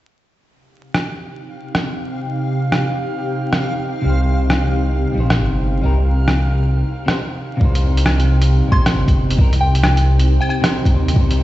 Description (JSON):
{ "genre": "future garage", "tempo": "135 BPM", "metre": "4/4", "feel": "swing 62% on 16ths", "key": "C minor", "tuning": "A4 = 442 Hz", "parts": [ { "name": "ethereal airy pad", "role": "sustained chords", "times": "1.1-11.4 s", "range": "C3 to G5", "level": "-24 LUFS", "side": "equal", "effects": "ensemble chorus, built-in reverb, phaser, sidechain pumping" }, { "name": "backwards swelling texture", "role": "texture", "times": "1.5-7.2 s", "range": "F5", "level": "-31 LUFS", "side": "right 3 dB", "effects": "built-in reverb" }, { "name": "lo-fi sampler-style drum kit", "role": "drums", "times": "0.9-11.4 s", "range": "claves, hi-hat, rim click", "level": "-21 LUFS", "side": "equal", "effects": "none" }, { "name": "electric guitar at the edge of break-up", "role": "accompaniment", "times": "4.0-11.4 s", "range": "C3 to C5", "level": "-22 LUFS", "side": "left 1 dB", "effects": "vintage 12-bit sampler grit, sidechain pumping, ping-pong delay" }, { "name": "dark detuned saw bass", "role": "bass", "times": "4.1-11.4 s", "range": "G1 to Eb2", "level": "-16 LUFS", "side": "equal", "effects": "sidechain pumping" }, { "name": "electronic kick drum", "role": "drums", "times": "7.6-11.3 s", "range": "none", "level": "-14 LUFS", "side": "equal", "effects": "none" }, { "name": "soft synth bell", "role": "melody", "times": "8.7-10.6 s", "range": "G5 to C6", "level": "-25 LUFS", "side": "equal", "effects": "chorus, dub echo" } ], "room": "light reverb, digital ambience", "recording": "played on a big sound system in a bare room, stone room reverb, vinyl crackle, nothing above 8.0 kHz", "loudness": "-14 LUFS", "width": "side -15 dB against mid", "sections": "0.5-7.6 A section; 7.6-11.4 B section", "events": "stop 7.2-7.6", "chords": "0.5 Cm" }